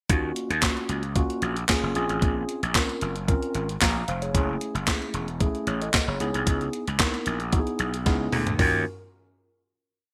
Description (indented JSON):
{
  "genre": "early-eighties boogie funk",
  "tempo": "113 BPM",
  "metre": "4/4",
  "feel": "straight",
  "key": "Eb minor",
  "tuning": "A4 = 440 Hz",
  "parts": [
    { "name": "mellow tine electric piano", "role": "accompaniment", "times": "0.1-8.8 s", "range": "Ab3 to Bb5", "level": "-32 LUFS", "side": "equal", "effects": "none" },
    { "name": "gritty slap bass", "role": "bass", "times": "0.1-8.8 s", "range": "Fb1 to Eb2", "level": "-30 LUFS", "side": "equal", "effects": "overdrive" },
    { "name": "clean 12-bit digital drum machine", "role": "drums", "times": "0.1-8.7 s", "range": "handclaps, hi-hat, kick drum, snare drum, toms", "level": "-27 LUFS", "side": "equal", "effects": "gated reverb" }
  ],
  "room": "light reverb, digital ambience",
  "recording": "bright 1980s-style digital production",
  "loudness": "-26 LUFS",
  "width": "mono",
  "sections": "0.1-8.6 verse; 8.6-10.1 final chord",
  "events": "drum fill 8.1-8.6",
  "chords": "0.1 Ebm9; 2.0 Bbm9; 4.3 Gbm9; 6.2 Dbm9; 8.6 Ebm9"
}